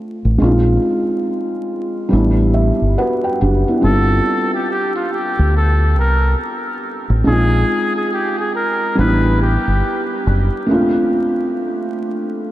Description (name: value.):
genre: lo-fi hip hop.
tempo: 70 BPM.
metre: 4/4.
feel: swing 60% on 16ths.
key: unclear.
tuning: A4 = 439 Hz.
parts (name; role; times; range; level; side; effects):
felt-muted upright piano; accompaniment; 0.0-12.5 s; G3 to G5; -18 LUFS; equal; cassette tape, low-pass filter.
deep dub fingered electric bass; bass; 0.2-10.5 s; F#1 to D2; -14 LUFS; equal; none.
trumpet with metal mute; melody; 3.8-10.1 s; F4 to B4; -20 LUFS; equal; low-pass filter, tape echo.
room: moderate huge ambient reverb, RT60 7.5 s.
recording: dreamy mix soaked in reverb, vinyl crackle.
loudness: -14 LUFS.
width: side -14 dB against mid.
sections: 0.0-12.5 A section.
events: felt piano fill 2.1-3.8.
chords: 0.4 Bb9sus4; 2.1 A9sus4; 3.8 G9sus4; 7.3 Bb9sus4; 9.0 A9sus4; 10.7 F6/A.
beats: | 0.41 1.26 2.12 2.98 | 3.83 4.69 5.55 6.41 | 7.26 8.12 8.98 9.83 | 10.69 11.55 12.40.